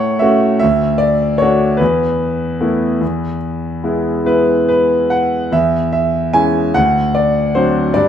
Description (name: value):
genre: classical, lyrical solo piano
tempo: 49 BPM (dotted quarters)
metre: 6/8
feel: rubato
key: unclear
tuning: A4 = 441 Hz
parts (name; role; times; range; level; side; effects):
- clear concert grand piano; solo; 0.0-8.1 s; D2 to G#5; -12 LUFS; equal; none
room: light reverb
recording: minimal, uncompressed stereo recording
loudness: -12 LUFS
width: side -9 dB against mid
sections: 0.0-8.1 A section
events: none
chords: 0.0 F#m/A; 0.6 D; 1.8 Esus4; 3.0 E; 5.5 C#m/E; 6.8 D7